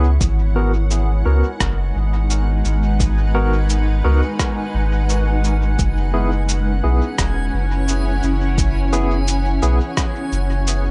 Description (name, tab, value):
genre	ambient dub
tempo	86 BPM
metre	4/4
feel	swing 56% on 16ths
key	G# minor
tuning	A4 = 440 Hz
part	granular cloud pad	sustained chords	0.0-10.9 s	G#3 to F#5	-27 LUFS	equal	built-in reverb
part	barky tine electric piano	stabs	0.0-9.8 s	B3 to A#4	-28 LUFS	equal	overdrive, fast tremolo, dub echo
part	warm sub bass	bass	0.0-10.9 s	E1 to C#2	-20 LUFS	equal	none
part	electronic cabasa and rim click	drums	0.2-10.8 s	none	-28 LUFS	equal	dub echo
part	electronic kick drum	drums	0.2-10.1 s	none	-23 LUFS	equal	overdrive
part	backwards swelling texture	texture	1.2-10.9 s	G#5	-36 LUFS	equal	built-in reverb
room	little or no reverb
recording	nothing above 10.5 kHz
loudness	-18 LUFS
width	mono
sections	0.0-10.9 A section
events	none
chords	0.2 G#m7; 5.8 F#7sus4